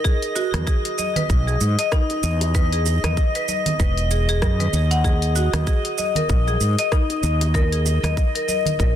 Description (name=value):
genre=organic downtempo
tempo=96 BPM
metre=4/4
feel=swing 58% on 16ths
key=unclear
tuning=A4 = 440 Hz
part: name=marimba with hard mallets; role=arpeggios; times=0.0-9.0 s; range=D#4 to F#5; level=-24 LUFS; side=left 2 dB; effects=tape echo
part: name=deep house drum kit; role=drums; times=0.0-8.9 s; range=hi-hat, rim click, shaker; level=-29 LUFS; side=right 2 dB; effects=overdrive
part: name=electronic kick drum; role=drums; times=0.0-8.9 s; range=none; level=-20 LUFS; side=equal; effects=none
part: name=drifting glass-harmonics texture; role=texture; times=0.0-9.0 s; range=D#5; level=-28 LUFS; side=left 1 dB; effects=chorus, built-in reverb
part: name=bongos and congas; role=percussion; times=0.4-8.8 s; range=none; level=-30 LUFS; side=right 3 dB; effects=none
part: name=fretless electric bass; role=bass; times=0.5-9.0 s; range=E1 to G#2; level=-20 LUFS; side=equal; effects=none
room=light reverb, digital ambience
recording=dense, heavily limited modern master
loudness=-18 LUFS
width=side -10 dB against mid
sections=0.0-9.0 A section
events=none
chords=0.0 Esus2; 5.0 D#5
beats=| 0.05 0.67 1.30 1.92 | 2.55 3.17 3.80 4.42 | 5.05 5.67 6.30 6.92 | 7.55 8.17 8.80